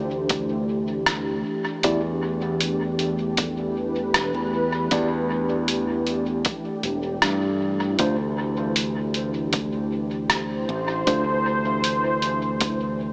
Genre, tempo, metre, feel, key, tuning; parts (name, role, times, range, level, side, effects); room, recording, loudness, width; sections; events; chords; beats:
ambient dub; 78 BPM; 4/4; straight; A4 = 437 Hz
warm analog pad; sustained chords; 0.0-13.1 s; E3 to C5; -29 LUFS; equal; chorus
modern bright fingered electric bass; bass; 0.0-13.1 s; E1 to G2; -29 LUFS; equal
electronic kick drum; drums; 0.3-12.8 s; -33 LUFS; equal; overdrive, small room ambience
lo-fi sampler-style drum kit; drums; 0.3-12.8 s; hi-hat, rim click; -28 LUFS; equal; small room ambience, dub echo
tine electric piano; stabs; 1.8-11.2 s; A3 to D5; -32 LUFS; equal; dub echo
moderate huge ambient reverb, RT60 3.9 s; small speaker sound; -24 LUFS; mono
0.0-13.1 A section
0.0 D7(no3); 1.8 Em7; 8.0 D7(no3)
0.30 1.07 | 1.84 2.61 3.38 4.15 | 4.92 5.69 6.46 7.23 | 8.00 8.77 9.54 10.30 | 11.07 11.84 12.61